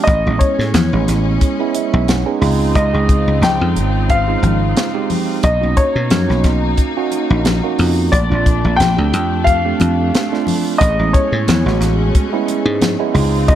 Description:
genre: electric jazz fusion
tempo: 90 BPM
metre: 4/4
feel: swing 56% on 16ths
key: unclear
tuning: A4 = 435 Hz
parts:
  - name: warm baby grand piano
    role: melody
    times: 0.0-13.6 s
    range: C#5 to G5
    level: -19 LUFS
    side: left 2 dB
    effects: slapback echo
  - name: tine electric piano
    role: accompaniment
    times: 0.0-13.6 s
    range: G#3 to G#5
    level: -20 LUFS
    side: right 9 dB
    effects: phaser
  - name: clear symphonic string section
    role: sustained chords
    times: 0.0-13.6 s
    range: Db3 to F4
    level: -25 LUFS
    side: left 4 dB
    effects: none
  - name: dry thumbed slap bass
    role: bass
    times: 0.1-13.6 s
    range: Ab1 to B2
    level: -16 LUFS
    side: equal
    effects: none
  - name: crisp fusion drum kit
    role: drums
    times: 0.1-13.6 s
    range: hi-hat, kick drum, snare drum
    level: -17 LUFS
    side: equal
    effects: none
  - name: congas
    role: percussion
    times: 0.1-13.6 s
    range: none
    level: -22 LUFS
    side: left 5 dB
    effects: none
room: light reverb, small room ambience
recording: none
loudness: -13 LUFS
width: side -11 dB against mid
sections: 0.0-13.6 A section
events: tine electric piano fill 1.4-2.8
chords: 0.1 Amaj9; 2.4 Dbmaj9; 5.4 Bmaj9; 8.1 Bbmaj9; 10.8 Amaj9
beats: | 0.07 0.75 1.42 2.09 | 2.76 3.43 4.10 4.77 | 5.44 6.11 6.78 7.45 | 8.12 8.79 9.46 10.13 | 10.81 11.48 12.15 12.82 | 13.49

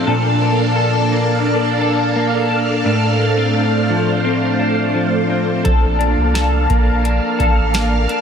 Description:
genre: dream pop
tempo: 86 BPM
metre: 4/4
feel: straight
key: D minor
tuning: A4 = 441 Hz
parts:
  - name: string machine, violins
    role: sustained chords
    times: 0.0-8.2 s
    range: A3 to F5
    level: -18 LUFS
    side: right 3 dB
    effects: phaser, ensemble chorus
  - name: clean electric guitar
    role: arpeggios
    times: 0.0-8.2 s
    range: A2 to A4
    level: -17 LUFS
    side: left 2 dB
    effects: analog chorus, ping-pong delay
  - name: warm sub bass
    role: bass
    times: 5.7-8.1 s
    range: A1 to C2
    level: -18 LUFS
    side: right 1 dB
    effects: none
  - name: booming analog drum machine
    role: drums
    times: 5.7-8.2 s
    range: hi-hat, kick drum, snare drum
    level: -17 LUFS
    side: equal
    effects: none
room: moderate shimmer reverb, RT60 5.8 s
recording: none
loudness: -14 LUFS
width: side -7 dB against mid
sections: 0.0-8.2 A section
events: none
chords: 0.1 Bbmaj7; 2.9 Dm7/A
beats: | 0.08 0.77 1.47 2.17 | 2.87 3.56 4.26 4.96 | 5.66 6.36 7.05 7.75

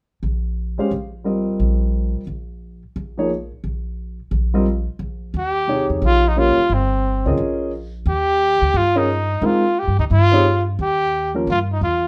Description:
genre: modal jazz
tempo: 176 BPM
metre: 4/4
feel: swing 64% on 8ths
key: Eb mixolydian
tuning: A4 = 440 Hz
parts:
  - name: upright bass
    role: bass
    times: 0.2-12.1 s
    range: G1 to Bb2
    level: -24 LUFS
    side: equal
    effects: none
  - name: warm grand piano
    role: accompaniment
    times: 0.8-11.5 s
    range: C3 to F5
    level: -23 LUFS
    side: equal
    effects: none
  - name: warm trumpet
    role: melody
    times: 5.4-12.1 s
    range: C4 to G4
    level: -20 LUFS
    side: equal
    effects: none
room: moderate studio reverb, RT60 0.6 s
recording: none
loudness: -19 LUFS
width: mono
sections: 0.0-5.3 A section; 5.3-12.1 B section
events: none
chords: 0.0 Eb69; 5.3 Eb13; 10.8 Cm/Eb (rootless)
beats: 0.23 0.57 0.91 | 1.25 1.59 1.93 2.27 | 2.61 2.96 3.30 3.64 | 3.98 4.32 4.66 5.00 | 5.34 5.68 6.02 6.36 | 6.71 7.04 7.39 7.73 | 8.07 8.41 8.75 9.09 | 9.43 9.77 10.11 10.45 | 10.79 11.13 11.48 11.82

